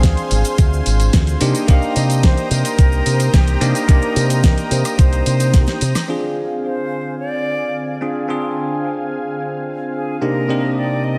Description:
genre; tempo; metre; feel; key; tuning
nu-disco, nu disco; 109 BPM; 4/4; straight; unclear; A4 = 440 Hz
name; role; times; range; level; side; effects
bell-like tine electric piano; accompaniment; 0.0-11.2 s; C3 to Ab4; -24 LUFS; equal; phaser, sidechain pumping, diffuse ambient delay
lush unison pad; sustained chords; 0.0-11.2 s; C3 to Eb6; -29 LUFS; equal; chorus, sidechain pumping
fingered electric bass with an envelope filter; bass; 0.0-5.9 s; Ab1 to C3; -19 LUFS; equal; none
electronic kick drum; drums; 0.0-5.7 s; none; -15 LUFS; equal; overdrive, small room ambience
pop drum kit; drums; 0.0-6.1 s; hi-hat, snare drum, tambourine, woodblock; -25 LUFS; equal; small room ambience
cabasa; percussion; 0.0-6.1 s; none; -37 LUFS; equal; none
bright concert flute; melody; 1.7-11.2 s; G4 to F5; -27 LUFS; equal; delay
room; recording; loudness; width
moderate lush hall reverb, RT60 2.0 s; dreamy mix soaked in reverb; -17 LUFS; mono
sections
0.0-6.1 A section; 6.1-11.2 B section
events
drum fill 5.5-6.1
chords
0.0 Dm7b5; 1.4 Cm7; 6.1 Dm7b5; 10.2 Cm7

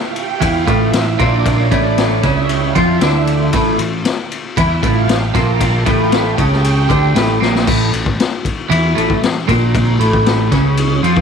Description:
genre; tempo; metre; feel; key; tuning
psychedelic rock; 116 BPM; 4/4; straight; A phrygian dominant; A4 = 440 Hz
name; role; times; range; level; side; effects
string machine, cellos; sustained chords; 0.0-7.6 s; C#5 to Bb5; -21 LUFS; right 10 dB; ensemble chorus
raw garage drum kit; drums; 0.2-11.2 s; crash cymbal, kick drum, ride cymbal, snare drum; -18 LUFS; left 4 dB; none
twelve-string electric guitar; riff; 0.4-11.2 s; A2 to F3; -14 LUFS; right 1 dB; phaser, double-tracked left and right
fuzz picked electric bass; bass; 0.4-11.2 s; A1 to F2; -21 LUFS; equal; overdrive
room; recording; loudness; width
light reverb; 1960s-style stereo; -12 LUFS; side -6 dB against mid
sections
0.0-7.7 A section; 7.7-11.2 B section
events
string machine solo 0.0-7.7; drum fill 7.4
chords
0.0 A

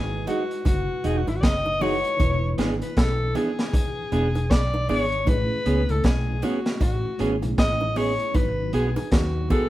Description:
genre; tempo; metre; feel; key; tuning
lovers rock reggae; 78 BPM; 4/4; swing 60% on 16ths; E major; A4 = 440 Hz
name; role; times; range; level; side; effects
breathy alto saxophone; melody; 0.0-9.7 s; E4 to D#5; -27 LUFS; left 2 dB; none
mellow tine electric piano; accompaniment; 0.0-9.7 s; E3 to C#5; -34 LUFS; equal; medium stereo tremolo, tape echo
vintage muted fingered electric bass; bass; 0.0-9.5 s; E1 to D#2; -27 LUFS; equal; none
mellow tonewheel organ; accompaniment; 0.1-9.6 s; E2 to G#4; -36 LUFS; equal; none
mellow electric guitar; stabs; 0.3-9.7 s; G#3 to G#4; -27 LUFS; right 3 dB; none
crunchy breakbeat drum kit; drums; 0.3-9.7 s; hi-hat, kick drum, snare drum; -23 LUFS; equal; none
bongos; percussion; 0.3-9.7 s; none; -36 LUFS; right 2 dB; tape echo
room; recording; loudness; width
moderate studio reverb, RT60 0.8 s; band playing live in one room; -21 LUFS; side -15 dB against mid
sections
0.0-9.7 A section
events
none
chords
0.0 Emaj9; 2.2 E7; 5.3 Amaj9; 8.3 G#m7

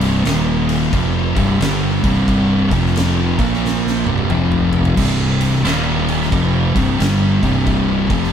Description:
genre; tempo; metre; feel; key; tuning
stoner and doom metal; 89 BPM; 4/4; swing 64% on 8ths; C minor; A4 = 440 Hz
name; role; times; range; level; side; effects
thick fuzz guitar; riff; 0.0-8.3 s; C2 to Bb3; -20 LUFS; left 9 dB; distortion
thick fuzz guitar; riff; 0.0-8.3 s; C2 to Bb3; -17 LUFS; right 4 dB; distortion
fuzz fingered electric bass; bass; 0.0-8.3 s; C1 to Bb1; -22 LUFS; left 1 dB; overdrive
oversized low-tuned drum kit; drums; 0.0-8.3 s; crash cymbal, kick drum, ride cymbal, snare drum, splash cymbal, toms; -21 LUFS; left 1 dB; none
room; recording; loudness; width
light reverb; band playing live in one room; -14 LUFS; side -8 dB against mid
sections
0.0-8.3 A section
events
drum fill 3.6-5.0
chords
0.2 Eb5; 0.9 C5; 2.6 F5; 3.3 Bb5; 4.0 C5; 4.3 F5; 5.0 C5; 5.6 Eb5; 6.3 C5

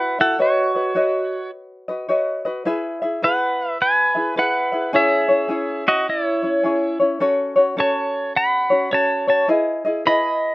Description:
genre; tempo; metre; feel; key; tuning
Hawaiian; 106 BPM; 4/4; swing 64% on 8ths; E major; A4 = 444 Hz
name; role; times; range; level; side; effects
pedal steel guitar; melody; 0.0-10.5 s; E4 to B5; -18 LUFS; right 1 dB; none
tenor ukulele; accompaniment; 0.0-10.5 s; C#4 to E5; -20 LUFS; left 1 dB; none
room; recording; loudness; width
little or no reverb; rough home demo mix; -17 LUFS; side -20 dB against mid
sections
0.0-10.5 A section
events
none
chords
0.4 Badd9; 2.7 E; 4.9 C#m; 7.2 F#m; 9.5 Emaj7

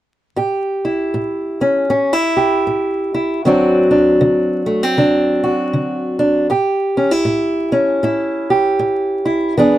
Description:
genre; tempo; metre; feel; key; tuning
blues; 78 BPM; 4/4; swing 60% on 8ths; unclear; A4 = 440 Hz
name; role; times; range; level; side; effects
fingerpicked acoustic archtop guitar; accompaniment; 0.4-9.8 s; A2 to G#4; -14 LUFS; equal; none
room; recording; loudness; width
little or no reverb; close, detailed microphones, vinyl crackle; -14 LUFS; side -13 dB against mid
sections
0.4-9.8 A section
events
none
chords
0.4 A7; 3.4 D7; 6.5 A7

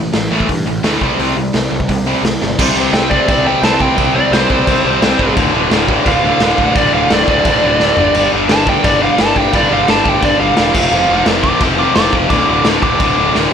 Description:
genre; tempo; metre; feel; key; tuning
punk rock; 173 BPM; 4/4; straight; unclear; A4 = 440 Hz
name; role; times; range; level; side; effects
distorted electric guitar; riff; 0.0-13.5 s; D2 to C4; -18 LUFS; right 16 dB; distortion
overdriven electric guitar; riff; 0.0-13.5 s; D2 to C4; -16 LUFS; left 10 dB; none
fuzz picked electric bass; bass; 0.0-13.5 s; D1 to G2; -22 LUFS; equal; overdrive
raw garage drum kit; drums; 0.1-13.4 s; crash cymbal, hi-hat, kick drum, snare drum, toms; -16 LUFS; equal; none
biting lead guitar; melody; 2.9-13.3 s; C5 to D6; -16 LUFS; right 2 dB; overdrive, ping-pong delay
room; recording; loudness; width
moderate small room ambience, RT60 0.5 s; none; -10 LUFS; side -8 dB against mid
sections
0.0-2.6 A section; 2.6-13.5 B section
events
drum fill 2.4, 7.8-8.1, 13.3; lead electric guitar solo 2.6-13.5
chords
0.0 A5; 1.0 C5; 5.4 D5; 8.0 G5; 10.7 F5; 12.3 D5

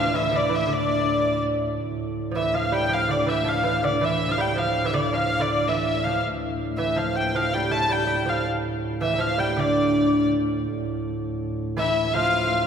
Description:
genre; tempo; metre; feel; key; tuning
medieval dance; 108 BPM (dotted quarters); 6/8; straight; D minor; A4 = 437 Hz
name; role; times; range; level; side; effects
rich hurdy-gurdy; melody; 0.0-12.7 s; D5 to A5; -24 LUFS; equal; none
clear fiddle; second line; 0.0-1.4, 11.8-12.7 s; D4 to F4; -30 LUFS; left 4 dB; none
lute; second line; 0.0-12.7 s; D3 to A3; -27 LUFS; right 1 dB; none
pipe organ, cornet; drone; 0.0-12.7 s; D2 to A2; -28 LUFS; right 1 dB; none
room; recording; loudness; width
wet church reverb, RT60 3.5 s; heard from further back in the room; -21 LUFS; side -7 dB against mid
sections
0.0-1.8 A section; 1.8-10.7 B section; 10.7-12.7 B section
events
none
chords
none

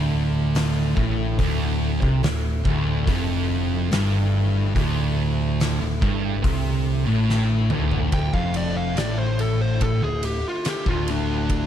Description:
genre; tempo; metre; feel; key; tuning
stoner and doom metal; 71 BPM; 4/4; straight; D minor; A4 = 443 Hz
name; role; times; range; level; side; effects
tonewheel organ; sustained chords; 0.0-11.7 s; D3 to E4; -36 LUFS; left 2 dB; slow rotary speaker, overdrive, chorus vibrato
sludgy distorted guitar; riff; 0.0-11.7 s; D2 to C3; -30 LUFS; left 1 dB; overdrive
thick fuzz guitar; riff; 0.0-11.7 s; D2 to C3; -27 LUFS; left 6 dB; distortion
thick fuzz guitar; riff; 0.0-11.7 s; D2 to C3; -26 LUFS; right 7 dB; distortion
overdriven picked electric bass; bass; 0.0-11.7 s; D1 to C2; -26 LUFS; equal; none
oversized low-tuned drum kit; drums; 0.5-11.7 s; hi-hat, kick drum, ride cymbal, snare drum, toms; -27 LUFS; equal; none
fuzz lead guitar; melody; 8.1-11.7 s; D4 to G5; -28 LUFS; left 1 dB; distortion, tape echo
room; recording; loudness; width
little or no reverb; dark, warm production; -20 LUFS; side -10 dB against mid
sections
0.0-8.1 A section; 8.1-11.7 B section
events
drum fill 7.3-8.1; lead electric guitar solo 8.1-11.7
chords
0.0 Dm

